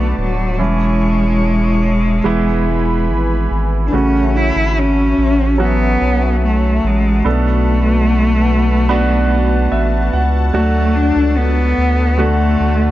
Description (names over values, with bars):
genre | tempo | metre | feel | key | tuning
pop | 72 BPM | 4/4 | straight | A major | A4 = 442 Hz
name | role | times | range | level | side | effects
rich cello | melody | 0.0-12.9 s | F#3 to E4 | -17 LUFS | left 1 dB | none
clear concert grand piano | accompaniment | 0.0-12.9 s | B2 to F#5 | -20 LUFS | right 4 dB | none
warm analog pad | sustained chords | 0.0-12.9 s | E4 to D6 | -24 LUFS | left 2 dB | chorus, tremolo
saturated sub bass | bass | 0.0-12.9 s | D1 to D2 | -16 LUFS | equal | none
room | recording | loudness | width
light reverb, studio ambience | dark, warm production, nothing above 7.8 kHz | -12 LUFS | side -14 dB against mid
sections
0.0-12.9 A section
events
grand piano fill 9.3-10.5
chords
0.0 Bm7; 0.6 A/E; 2.3 E; 3.9 A6; 7.3 Bm7; 10.5 D